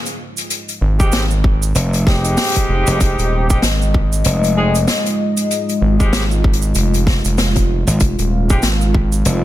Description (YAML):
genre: glitch hop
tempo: 96 BPM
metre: 4/4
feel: swing 58% on 16ths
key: F minor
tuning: A4 = 440 Hz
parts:
  - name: dark analog pad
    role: sustained chords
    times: 0.0-9.4 s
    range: Ab3 to F5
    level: -22 LUFS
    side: left 1 dB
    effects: chorus, sidechain pumping
  - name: street-band drum kit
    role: drums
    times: 0.1-9.4 s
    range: hi-hat, rim click, snare drum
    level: -21 LUFS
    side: left 2 dB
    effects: none
  - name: cabasa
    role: percussion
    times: 0.1-9.4 s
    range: none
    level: -26 LUFS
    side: right 8 dB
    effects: none
  - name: gritty driven synth bass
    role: bass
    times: 0.8-9.2 s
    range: Eb1 to Ab1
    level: -16 LUFS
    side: equal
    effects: tube saturation
  - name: mellow horn section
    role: stabs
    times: 1.0-8.6 s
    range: Ab3 to Ab4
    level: -23 LUFS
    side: equal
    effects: sidechain pumping, tape echo
  - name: electronic kick drum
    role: drums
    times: 1.0-9.1 s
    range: none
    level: -14 LUFS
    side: equal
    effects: none
  - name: gritty slap bass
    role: bass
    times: 1.8-9.4 s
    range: F1 to Ab1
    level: -15 LUFS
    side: equal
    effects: overdrive
room: light reverb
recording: none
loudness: -13 LUFS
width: side -14 dB against mid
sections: 0.0-9.4 A section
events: none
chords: 0.0 Fm7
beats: | 0.50 1.13 1.75 2.38 | 3.00 3.63 4.25 4.88 | 5.50 6.13 6.75 7.38 | 8.00 8.63 9.25